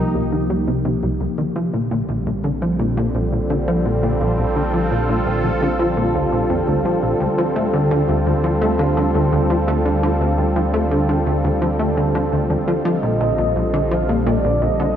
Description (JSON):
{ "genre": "ambient, sequencer-driven space music", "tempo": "85 BPM", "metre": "4/4", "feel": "straight", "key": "unclear", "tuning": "A4 = 440 Hz", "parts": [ { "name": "sweeping resonant pad", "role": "sustained chords", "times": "0.0-15.0 s", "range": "C3 to A4", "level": "-20 LUFS", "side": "equal", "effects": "chorus" }, { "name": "plucky analog bass", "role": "riff", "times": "0.0-14.9 s", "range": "Bb1 to A3", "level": "-20 LUFS", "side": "equal", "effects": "lush chorus, analog delay" }, { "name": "warm sub bass", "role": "bass", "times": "0.0-15.0 s", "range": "Bb1 to D2", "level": "-25 LUFS", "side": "equal", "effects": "none" }, { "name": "mellow horn-like synth lead", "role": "melody", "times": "12.9-15.0 s", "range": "D5 to F5", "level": "-22 LUFS", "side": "right 1 dB", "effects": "analog chorus, analog delay" } ], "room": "wet lush hall reverb, RT60 3.1 s", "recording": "dreamy mix soaked in reverb, nothing above 7.6 kHz", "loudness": "-16 LUFS", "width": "side -9 dB against mid", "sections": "0.0-15.0 A section", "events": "none", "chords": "0.0 Cm; 1.6 Bb; 7.2 Dm7; 12.9 Bb", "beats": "0.15 0.85 | 1.56 2.27 2.97 3.68 | 4.38 5.09 5.80 6.50 | 7.21 7.91 8.62 9.33 | 10.03 10.74 11.44 12.15 | 12.86 13.56 14.27" }